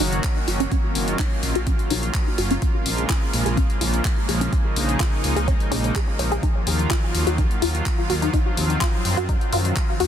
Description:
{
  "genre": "progressive house",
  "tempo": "126 BPM",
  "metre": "4/4",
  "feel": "straight",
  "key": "Eb dorian",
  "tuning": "A4 = 438 Hz",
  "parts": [
    { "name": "lush unison pad", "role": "sustained chords", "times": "0.0-10.1 s", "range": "Db3 to Gb4", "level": "-26 LUFS", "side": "equal", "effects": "chorus, sidechain pumping" },
    { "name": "tight sequenced synth", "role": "arpeggios", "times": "0.0-10.1 s", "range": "Db4 to Db5", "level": "-27 LUFS", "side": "left 1 dB", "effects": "chorus, phaser, sidechain pumping, ping-pong delay" },
    { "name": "dark detuned saw bass", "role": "bass", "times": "0.0-10.1 s", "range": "Gb1 to Gb2", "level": "-24 LUFS", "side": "equal", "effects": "sidechain pumping" },
    { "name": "deep house drum kit", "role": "drums", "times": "0.0-10.1 s", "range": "handclaps, hi-hat", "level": "-28 LUFS", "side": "left 2 dB", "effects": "overdrive" },
    { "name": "electronic kick drum", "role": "drums", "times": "0.2-9.9 s", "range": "none", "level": "-22 LUFS", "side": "equal", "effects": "overdrive" }
  ],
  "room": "light reverb, digital ambience",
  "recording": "dense, heavily limited modern master",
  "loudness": "-19 LUFS",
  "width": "side -9 dB against mid",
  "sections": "0.0-10.1 A section",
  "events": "filter sweep on synth arpeggio sound 0.0-10.1",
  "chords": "0.0 Gb6; 2.6 Bbm7; 6.4 Ebmadd9",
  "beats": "0.24 | 0.72 1.19 1.67 2.15 | 2.62 3.10 3.57 4.05 | 4.53 5.00 5.48 5.95 | 6.43 6.91 7.38 7.86 | 8.34 8.81 9.29 9.76"
}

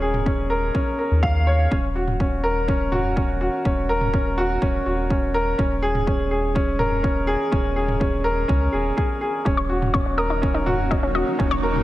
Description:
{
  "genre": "piano and strings electronica",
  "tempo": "124 BPM",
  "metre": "4/4",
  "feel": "straight",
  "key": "Eb minor",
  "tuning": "A4 = 439 Hz",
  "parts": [
    { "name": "bright upright piano", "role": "riff", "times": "0.0-11.8 s", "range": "Db4 to F5", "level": "-22 LUFS", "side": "equal", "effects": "low-pass filter, tape echo" },
    { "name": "warm sub bass", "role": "bass", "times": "0.0-11.8 s", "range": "Eb1 to Eb2", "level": "-25 LUFS", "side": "equal", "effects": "sidechain pumping" },
    { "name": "electronic toms", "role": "drums", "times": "0.1-11.8 s", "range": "none", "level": "-29 LUFS", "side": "right 1 dB", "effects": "overdrive" },
    { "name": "electronic kick drum", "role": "drums", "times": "0.3-11.5 s", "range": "none", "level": "-24 LUFS", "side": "equal", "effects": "overdrive" },
    { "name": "granular cloud pad", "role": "sustained chords", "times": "10.1-11.8 s", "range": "Bb3 to Db5", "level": "-29 LUFS", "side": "equal", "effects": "built-in reverb, sidechain pumping" },
    { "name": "analog pluck", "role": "arpeggios", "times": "9.5-11.5 s", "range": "Db4 to Eb5", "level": "-26 LUFS", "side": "left 2 dB", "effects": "chorus, sidechain pumping, tape echo" }
  ],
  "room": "light reverb, digital ambience",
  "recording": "none",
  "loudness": "-19 LUFS",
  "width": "side -15 dB against mid",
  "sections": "0.0-11.8 A section",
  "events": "filter sweep on upright piano 0.0-11.8",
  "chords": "0.0 Bbm7/Eb; 1.7 Ebm7; 5.6 Bbm7/Eb; 9.5 Ebm7",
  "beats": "0.26 0.75 1.23 | 1.72 2.20 2.68 3.17 | 3.65 4.13 4.62 5.10 | 5.59 6.07 6.55 7.04 | 7.52 8.01 8.49 8.97 | 9.46 9.94 10.43 10.91 | 11.39"
}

